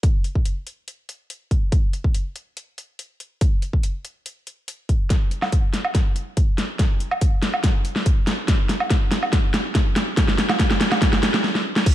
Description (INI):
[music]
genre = dubstep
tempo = 142 BPM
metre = 4/4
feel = half-time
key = none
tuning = none
[part]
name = dubstep drum kit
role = drums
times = 0.0-11.9 s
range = crash cymbal, hi-hat, snare drum, woodblock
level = -22 LUFS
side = equal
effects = none
[part]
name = electronic kick drum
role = drums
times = 0.0-11.9 s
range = none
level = -19 LUFS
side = equal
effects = none
[sound]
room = light reverb, digital ambience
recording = dark, warm production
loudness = -18 LUFS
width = side -13 dB against mid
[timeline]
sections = 0.0-5.1 A section; 5.1-11.9 B section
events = build-up 5.1-11.9; drum fill 5.1-11.4, 11.4-11.9; stop 11.4-11.9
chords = none